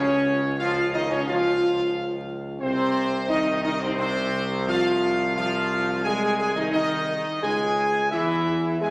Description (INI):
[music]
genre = classical, ceremonial fanfare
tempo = 88 BPM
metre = 4/4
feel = straight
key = Ab major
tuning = A4 = 442 Hz
[part]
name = bright trumpet section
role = melody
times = 0.0-8.9 s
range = C5 to Ab5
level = -30 LUFS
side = equal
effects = none
[part]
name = clear trombone section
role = sustained chords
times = 0.0-8.9 s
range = C3 to Ab3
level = -33 LUFS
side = equal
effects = none
[part]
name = mellow French horn section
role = sustained chords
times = 0.0-8.9 s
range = C4 to Ab4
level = -27 LUFS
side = equal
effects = none
[part]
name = clear tuba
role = bass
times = 0.0-8.9 s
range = C2 to E2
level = -33 LUFS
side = equal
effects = none
[sound]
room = wet scoring stage reverb, RT60 1.9 s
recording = vinyl crackle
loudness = -24 LUFS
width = mono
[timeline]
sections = 0.0-8.9 A section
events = none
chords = 0.0 Db; 2.6 Ab6/C; 8.1 E